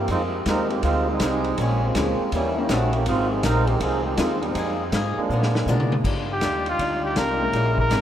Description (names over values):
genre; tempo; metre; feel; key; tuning
jazz, big band swing; 161 BPM; 4/4; swing 66% on 8ths; Eb major; A4 = 439 Hz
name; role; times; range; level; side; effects
warm trombone section; second line; 0.0-5.9 s; Eb3 to Bb4; -25 LUFS; right 2 dB; none
upright bass; bass; 0.0-8.0 s; Ab1 to Cb3; -25 LUFS; equal; none
picked swing-style acoustic guitar; accompaniment; 0.1-8.0 s; Ab2 to Ab4; -31 LUFS; left 4 dB; none
vintage drum kit; drums; 0.1-8.0 s; crash cymbal, hi-hat, kick drum, ride cymbal, snare drum, toms; -28 LUFS; equal; none
dark baby grand piano; accompaniment; 0.5-7.5 s; Ab3 to Bb4; -33 LUFS; left 3 dB; none
clear trombone section; sustained chords; 6.0-8.0 s; Db3 to F4; -32 LUFS; left 1 dB; none
clear trumpet; melody; 6.3-8.0 s; F4 to Bb4; -23 LUFS; equal; none
room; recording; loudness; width
wet cathedral reverb, RT60 4.9 s; in a vast, echoing space; -20 LUFS; side -10 dB against mid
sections
0.0-6.0 A section; 6.0-8.0 B section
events
trombone section solo 0.0-6.0; drum fill 5.3-6.0; trumpet solo 6.0-8.0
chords
0.1 Fm9; 1.6 Bbm7; 2.3 Eb7b9; 3.1 Ab6; 4.6 Fm11; 5.3 Bb7b9; 6.0 Ebmaj9